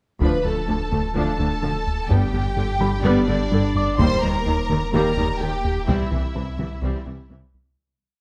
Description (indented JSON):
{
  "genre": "cinematic, hybrid orchestral and electronic film score",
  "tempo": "127 BPM",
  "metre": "4/4",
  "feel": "straight",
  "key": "D dorian",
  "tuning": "A4 = 440 Hz",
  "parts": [
    { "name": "warm symphonic violin section", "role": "melody", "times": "0.2-7.3 s", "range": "D5 to C6", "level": "-32 LUFS", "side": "equal", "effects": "none" },
    { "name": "warm symphonic violin section", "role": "second line", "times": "0.2-7.3 s", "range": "D4 to C5", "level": "-31 LUFS", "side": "equal", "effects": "none" },
    { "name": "clear symphonic viola section", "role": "accompaniment", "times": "0.2-7.4 s", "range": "C3 to D4", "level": "-30 LUFS", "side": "equal", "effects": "none" },
    { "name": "bright trombone section", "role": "sustained chords", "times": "0.2-7.0 s", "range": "D3 to G3", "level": "-35 LUFS", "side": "equal", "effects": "none" },
    { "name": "mellow French horn section", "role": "sustained chords", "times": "0.2-7.0 s", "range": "A3 to G4", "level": "-34 LUFS", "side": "equal", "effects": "none" },
    { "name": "thumb-piano-like synth pluck", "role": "arpeggios", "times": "0.2-7.4 s", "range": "C3 to G4", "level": "-35 LUFS", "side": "equal", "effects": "chorus" },
    { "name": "plucky analog bass", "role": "riff", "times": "0.2-7.7 s", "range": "C2 to G3", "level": "-29 LUFS", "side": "equal", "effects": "none" },
    { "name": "punchy sub bass", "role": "bass", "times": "0.2-7.8 s", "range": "D1 to C2", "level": "-32 LUFS", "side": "equal", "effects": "none" },
    { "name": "rich symphonic cello section", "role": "bass", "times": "0.2-7.4 s", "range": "C2 to G2", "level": "-31 LUFS", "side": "equal", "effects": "none" },
    { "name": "warm studio double bass section", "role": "bass", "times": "0.2-7.4 s", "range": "G1 to Eb2", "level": "-31 LUFS", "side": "equal", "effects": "none" },
    { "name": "taiko ensemble", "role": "drums", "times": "0.2-6.8 s", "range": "none", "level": "-31 LUFS", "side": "equal", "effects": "none" },
    { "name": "dark grand piano", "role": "texture", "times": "0.7-7.8 s", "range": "A4 to D6", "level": "-37 LUFS", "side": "equal", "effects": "digital delay" }
  ],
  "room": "moderate concert hall reverb, RT60 2.0 s",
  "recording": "none",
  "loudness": "-22 LUFS",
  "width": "mono",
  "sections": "0.2-7.8 theme",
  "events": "fade-out 5.9-7.8",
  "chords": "0.2 Dm; 2.1 G; 4.0 Eb; 5.9 C",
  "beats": "| 0.21 0.69 1.16 1.63 | 2.10 2.58 3.05 3.52 | 3.99 4.47 4.94 5.41 | 5.88 6.36 6.83 7.30"
}